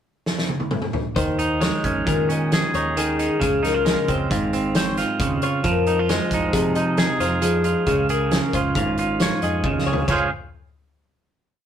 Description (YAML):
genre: math rock and midwest emo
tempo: 135 BPM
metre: 5/4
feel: straight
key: Db major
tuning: A4 = 440 Hz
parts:
  - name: loose indie drum kit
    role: drums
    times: 0.3-10.2 s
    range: crash cymbal, hi-hat, kick drum, snare drum, toms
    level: -24 LUFS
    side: equal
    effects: none
  - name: twangy electric guitar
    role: accompaniment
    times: 1.2-10.3 s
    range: Ab2 to Db5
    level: -22 LUFS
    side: right 3 dB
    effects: none
  - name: twelve-string electric guitar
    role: arpeggios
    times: 1.2-10.3 s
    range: Ab4 to F5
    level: -26 LUFS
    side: left 6 dB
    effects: none
  - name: growling fingered electric bass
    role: bass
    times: 1.2-10.3 s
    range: Ab1 to F3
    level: -28 LUFS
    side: equal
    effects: overdrive
room: moderate studio reverb, RT60 0.6 s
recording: rough rehearsal-room recording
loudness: -19 LUFS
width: side -9 dB against mid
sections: 0.0-1.2 pickup bar; 1.2-10.1 A section; 10.1-11.7 final chord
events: drum fill 0.3-1.2, 9.6-10.1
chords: 0.0 N.C.; 1.2 Eb7sus4; 3.4 Dbmaj7; 5.6 Fm7; 7.9 Dbadd9; 10.1 N.C.